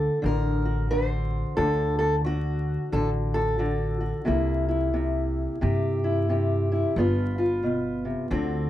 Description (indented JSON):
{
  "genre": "acoustic country blues, solo or duo",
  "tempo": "89 BPM",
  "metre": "4/4",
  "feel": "swing 62% on 8ths",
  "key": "unclear",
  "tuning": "A4 = 441 Hz",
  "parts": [
    { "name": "fingerpicked steel-string acoustic guitar", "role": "melody", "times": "0.0-8.7 s", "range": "G2 to C5", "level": "-25 LUFS", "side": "equal", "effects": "none" },
    { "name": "upright bass", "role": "bass", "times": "0.0-8.7 s", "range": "G1 to G2", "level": "-27 LUFS", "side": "equal", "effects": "none" }
  ],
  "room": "moderate booth ambience, RT60 0.2 s",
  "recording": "vinyl crackle",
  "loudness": "-23 LUFS",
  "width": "side -13 dB against mid",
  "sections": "0.0-8.7 A section",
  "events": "none",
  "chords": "0.0 D; 4.3 C7; 7.0 G7",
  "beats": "0.24 0.91 | 1.58 2.25 2.93 3.60 | 4.27 4.94 5.62 6.29 | 6.96 7.63 8.30"
}